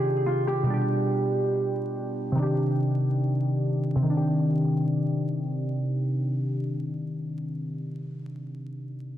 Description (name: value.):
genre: hip hop.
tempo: free time.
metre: none.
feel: none.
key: C harmonic minor.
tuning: A4 = 441 Hz.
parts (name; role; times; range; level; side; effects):
Celtic harp; melody; 0.0-2.8 s; F4 to G4; -29 LUFS; right 3 dB; low-pass filter, digital delay.
glassy digital keys; accompaniment; 0.0-9.2 s; B2 to G4; -25 LUFS; equal; chorus, low-pass filter.
room: moderate lush hall reverb, RT60 1.6 s.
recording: dense, heavily limited modern master, vinyl crackle.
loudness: -24 LUFS.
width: side -12 dB against mid.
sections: 0.0-4.1 A section; 4.1-7.4 B section.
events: filter sweep 0.0-4.1.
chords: 0.0 Cmadd9; 0.7 G; 2.4 Cmadd9.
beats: free time.